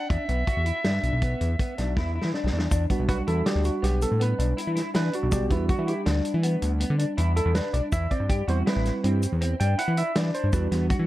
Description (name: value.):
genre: progressive instrumental, band music in an uneven meter.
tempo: 161 BPM.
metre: 7/4.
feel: straight.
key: E minor.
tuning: A4 = 443 Hz.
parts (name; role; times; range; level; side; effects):
warm soprano saxophone; melody; 0.0-2.3 s; E5; -32 LUFS; right 1 dB; digital delay.
electric guitar through a small old amp; arpeggios; 0.0-11.0 s; B3 to G4; -32 LUFS; left 2 dB; analog chorus, digital delay.
fat analog bass; bass; 0.1-11.1 s; A1 to E3; -24 LUFS; equal; none.
warm soul drum kit; drums; 0.1-11.0 s; hi-hat, kick drum, snare drum; -28 LUFS; equal; none.
tube shaker; percussion; 2.7-11.0 s; none; -43 LUFS; left 5 dB; none.
overdriven tine electric piano; accompaniment; 2.9-11.1 s; G3 to G5; -29 LUFS; right 3 dB; none.
room: light reverb.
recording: dark, warm production.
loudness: -22 LUFS.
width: side -15 dB against mid.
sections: 0.0-2.7 A section; 2.7-11.1 B section.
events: drum fill 2.0-2.7; tine electric piano solo 2.7-11.1.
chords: 0.1 E7(no3); 2.7 Em7; 7.9 C; 10.5 Em7.